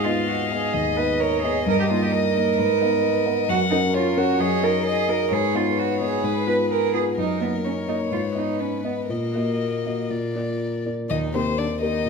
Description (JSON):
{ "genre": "quick classical-period movement for piano quartet", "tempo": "116-135 BPM", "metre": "4/4", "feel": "rubato", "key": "Eb minor", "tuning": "A4 = 440 Hz", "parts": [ { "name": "warm violin", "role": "melody", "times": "0.0-12.1 s", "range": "Ab4 to Gb5", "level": "-28 LUFS", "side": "left 7 dB", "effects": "none" }, { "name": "warm cello", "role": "second line", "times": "0.0-12.1 s", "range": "C3 to Cb5", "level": "-24 LUFS", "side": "right 8 dB", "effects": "none" }, { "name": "warm violin", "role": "second line", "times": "0.0-12.1 s", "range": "C4 to Eb5", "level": "-32 LUFS", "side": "left 3 dB", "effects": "none" }, { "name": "dark concert grand piano", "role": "accompaniment", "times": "0.0-12.1 s", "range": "Eb2 to Eb5", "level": "-24 LUFS", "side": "left 2 dB", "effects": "none" } ], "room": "wet recital hall reverb, RT60 1.7 s", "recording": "none", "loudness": "-20 LUFS", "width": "side -4 dB against mid", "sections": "0.0-11.1 A section", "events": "none", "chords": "0.0 Abm; 1.7 Eb/G; 2.6 Abm; 3.5 Gb; 4.4 Ebm/Gb; 5.3 Abm; 6.2 Fdim/Ab; 7.2 Ebm/Gb; 8.1 Abm; 9.1 Ebm/Bb; 10.1 Bb; 11.1 Eb", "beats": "0.28 0.74 1.20 | 1.66 2.12 2.58 3.04 | 3.49 3.94 4.40 4.86 | 5.32 5.78 6.24 6.70 | 7.17 7.64 8.11 8.59 | 9.09 9.60 10.10 10.60 | 11.10 11.58 12.05" }